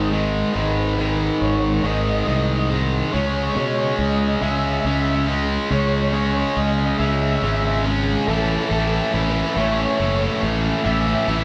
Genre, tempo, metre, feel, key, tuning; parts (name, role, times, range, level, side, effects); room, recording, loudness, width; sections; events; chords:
post-rock; 47 BPM (dotted quarters); 6/8; straight; A lydian; A4 = 440 Hz
electric guitar through a small old amp; melody; 0.0-11.4 s; A4 to E5; -29 LUFS; equal
overdriven electric guitar; riff; 0.0-11.4 s; G#2 to A4; -23 LUFS; equal
fuzz fingered electric bass; bass; 0.0-11.4 s; F#1 to B2; -25 LUFS; equal; overdrive
moderate large studio reverb, RT60 0.9 s; band playing live in one room; -20 LUFS; mono
0.0-8.3 A section; 8.3-11.4 B section
build-up 0.0-8.3
0.0 G#m; 3.1 C#m; 8.3 A